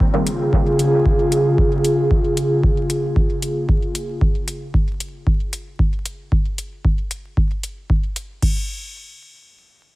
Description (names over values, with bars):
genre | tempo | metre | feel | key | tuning
dub techno | 114 BPM | 4/4 | swing 56% on 16ths | unclear | A4 = 440 Hz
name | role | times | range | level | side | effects
airy breathy pad | sustained chords | 0.0-4.2 s | Db3 to Ab4 | -19 LUFS | equal | chorus, sidechain pumping
electronic kick drum | drums | 0.0-8.5 s | none | -18 LUFS | equal | none
booming analog drum machine | drums | 0.3-8.5 s | crash cymbal, hi-hat | -29 LUFS | left 1 dB | none
room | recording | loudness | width
light reverb, digital ambience | heavily compressed radio sound, vinyl crackle | -17 LUFS | side -18 dB against mid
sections
0.0-8.4 A section; 8.4-10.0 B section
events
filter sweep on analog synth pad 0.0-4.2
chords
0.0 Bbm7; 8.4 N.C.